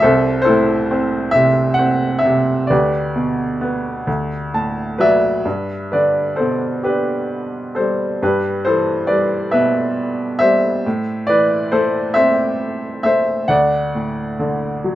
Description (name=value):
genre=classical, lyrical solo piano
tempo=45 BPM (dotted quarters)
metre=6/8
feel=rubato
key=G major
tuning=A4 = 440 Hz
part: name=bright upright piano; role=solo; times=0.0-14.9 s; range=C2 to A5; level=-15 LUFS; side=equal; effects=none
room=light reverb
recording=minimal, uncompressed stereo recording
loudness=-15 LUFS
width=side -14 dB against mid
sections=0.0-5.5 A section; 5.5-14.9 B section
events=upright piano fill 4.1-5.5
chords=0.0 Am/C; 2.7 G/D; 4.1 D; 5.5 G; 10.8 Am; 13.5 D